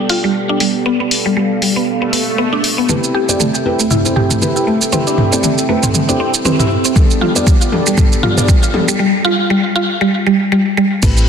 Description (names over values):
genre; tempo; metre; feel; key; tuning
afro house; 118 BPM; 4/4; swing 57% on 16ths; unclear; A4 = 439 Hz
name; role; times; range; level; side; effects
dark analog pad; sustained chords; 0.0-11.3 s; B3 to A5; -21 LUFS; right 2 dB; chorus, sidechain pumping
felt-muted upright piano; stabs; 0.0-11.3 s; B3 to D5; -19 LUFS; left 2 dB; sidechain pumping, dub echo
mallet-like synth pluck; arpeggios; 0.1-11.2 s; G3 to G4; -15 LUFS; equal; wide subtle chorus, sidechain pumping, dub echo
deep house drum kit; drums; 0.1-11.3 s; crash cymbal, hi-hat, shaker, toms; -16 LUFS; right 1 dB; none
swell; sound effects; 2.0-2.9 s; none; -21 LUFS; right 2 dB; none
electronic kick drum; drums; 7.0-11.1 s; none; -11 LUFS; equal; none
woody FM bass; bass; 11.0-11.3 s; A1; -13 LUFS; equal; sidechain pumping
room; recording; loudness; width
wet lush hall reverb, RT60 1.7 s; dense, heavily limited modern master, low-pass filter; -11 LUFS; side -7 dB against mid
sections
0.0-2.9 A section; 2.9-11.0 B section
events
swell 2.0-2.9; build-up 2.9-11.0; drum fill 2.9-9.0; filter sweep on synth arpeggio sound 2.9-11.0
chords
0.0 Gadd9; 2.9 Am7; 7.0 Gadd9